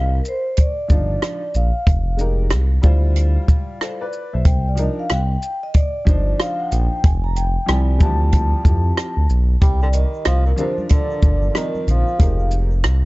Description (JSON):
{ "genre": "hip hop, jazz-hop", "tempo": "93 BPM", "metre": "4/4", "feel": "swing 62% on 16ths", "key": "C minor", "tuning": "A4 = 441 Hz", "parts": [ { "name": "vibraphone with medium mallets", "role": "melody", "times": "0.0-12.5 s", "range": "Bb4 to Bb5", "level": "-26 LUFS", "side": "equal", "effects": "none" }, { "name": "smooth synth bass", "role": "bass", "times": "0.0-13.1 s", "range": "F1 to F2", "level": "-18 LUFS", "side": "equal", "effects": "none" }, { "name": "compact cocktail drum kit", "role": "drums", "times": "0.2-13.0 s", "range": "hi-hat, kick drum, rim click, shaker", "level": "-16 LUFS", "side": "equal", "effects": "none" }, { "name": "clear upright piano", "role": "accompaniment", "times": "0.9-12.7 s", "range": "E3 to E5", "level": "-27 LUFS", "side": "left 1 dB", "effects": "none" }, { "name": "breathy tenor saxophone", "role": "second line", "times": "9.6-12.5 s", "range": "Bb2 to G3", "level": "-29 LUFS", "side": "right 3 dB", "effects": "analog delay" }, { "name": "tube shaker and congas", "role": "percussion", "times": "9.6-13.0 s", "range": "none", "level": "-32 LUFS", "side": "right 2 dB", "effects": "none" } ], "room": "studio ambience", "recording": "dark, warm production, nothing above 7.8 kHz", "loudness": "-16 LUFS", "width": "side -21 dB against mid", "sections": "0.0-9.6 A section; 9.6-13.1 A section", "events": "none", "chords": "0.0 Cmadd9 (rootless); 1.9 Fm11; 2.8 Dm11; 4.5 Cm11; 7.0 Fsus2; 8.0 Dm11; 9.6 Cm11; 12.2 Fm11", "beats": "0.58 1.23 | 1.87 2.52 3.17 3.81 | 4.46 5.10 5.75 6.39 | 7.04 7.68 8.33 8.97 | 9.62 10.26 10.91 11.55 | 12.20 12.84" }